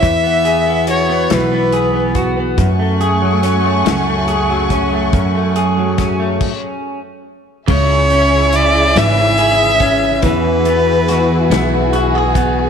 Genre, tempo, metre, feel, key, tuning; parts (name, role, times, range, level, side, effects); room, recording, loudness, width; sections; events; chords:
six-eight pop ballad; 47 BPM (dotted quarters); 6/8; straight; F# minor; A4 = 442 Hz
rich violin; melody; 0.0-2.3, 7.7-11.9 s; B4 to E5; -15 LUFS; equal
direct-recorded clean electric guitar; accompaniment; 0.0-12.7 s; F#2 to G#4; -17 LUFS; equal; double-tracked left and right
upright bass; bass; 0.0-12.7 s; G#1 to F#2; -18 LUFS; right 1 dB
natural country drum kit; drums; 0.0-12.6 s; crash cymbal, hi-hat, kick drum, snare drum; -21 LUFS; left 3 dB
warm studio string section; sustained chords; 2.6-12.7 s; C#3 to C#6; -20 LUFS; equal
moderate echo chamber reverb, RT60 2.1 s; 1960s-style stereo; -12 LUFS; side -7 dB against mid
0.0-7.7 A section; 7.7-12.7 B section
stop 6.4-7.7
0.0 Eadd9; 2.6 F#madd9; 7.7 C#m; 10.2 Eadd9